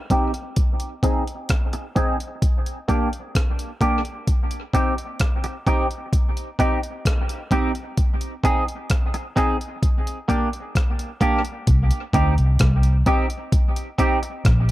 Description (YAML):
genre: dub reggae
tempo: 65 BPM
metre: 4/4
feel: straight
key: C minor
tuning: A4 = 440 Hz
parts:
  - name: clean electric guitar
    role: accompaniment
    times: 0.1-14.3 s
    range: Bb3 to Ab4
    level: -24 LUFS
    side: right 1 dB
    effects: lush chorus, high-pass filter, low-pass filter, tape echo
  - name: breakbeat sampler-style drum kit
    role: drums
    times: 0.1-14.7 s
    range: hi-hat, kick drum, rim click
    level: -21 LUFS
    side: equal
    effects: none
  - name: vintage muted fingered electric bass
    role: bass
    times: 11.7-14.7 s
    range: Bb1 to D2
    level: -17 LUFS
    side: equal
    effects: none
room: light reverb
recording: none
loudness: -19 LUFS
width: side -16 dB against mid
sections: 0.0-11.7 A section; 11.7-14.7 B section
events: filter sweep on clean electric guitar 0.0-11.7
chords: 0.0 Cm; 0.6 Ab; 2.4 Gm; 4.3 Cm; 8.0 Ab; 9.8 Gm; 11.7 Cm